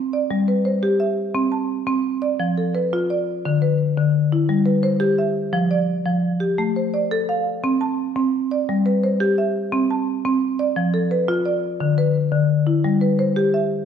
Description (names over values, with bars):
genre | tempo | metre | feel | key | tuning
southern african traditional | 115 BPM (dotted quarters) | 12/8 | straight | C major | A4 = 444 Hz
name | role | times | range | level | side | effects
marimba with medium mallets | solo | 0.0-13.8 s | D3 to A5 | -18 LUFS | left 1 dB | none
room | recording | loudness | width
moderate recital hall reverb, RT60 1.6 s | none | -18 LUFS | side -8 dB against mid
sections
0.0-9.7 A section; 9.7-13.8 B section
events
none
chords
0.3 G; 1.3 C; 2.4 F; 3.4 Bmadd11/D; 4.5 G; 5.5 Dmadd11/F; 6.6 Am; 7.6 Amadd11/C; 8.7 G; 9.7 C; 10.8 F; 11.8 Bmadd11/D; 12.8 G